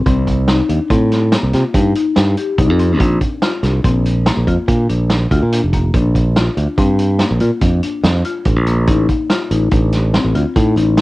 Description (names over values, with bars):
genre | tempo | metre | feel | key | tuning
progressive instrumental, band music in an uneven meter | 143 BPM | 7/4 | straight | Bb major | A4 = 441 Hz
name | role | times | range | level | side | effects
marimba with hard mallets | arpeggios | 0.1-11.0 s | Bb3 to G4 | -20 LUFS | left 4 dB | cassette tape
modern bright fingered electric bass | bass | 0.1-11.0 s | F1 to C3 | -14 LUFS | right 1 dB | none
vintage drum kit | drums | 0.1-11.0 s | hi-hat, kick drum, snare drum | -18 LUFS | right 1 dB | cassette tape
room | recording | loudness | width
light reverb | home recording on cassette | -12 LUFS | side -19 dB against mid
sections
0.0-11.0 A section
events
none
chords
0.1 Cm; 3.0 Bbadd9; 5.9 Bb; 8.9 F7/A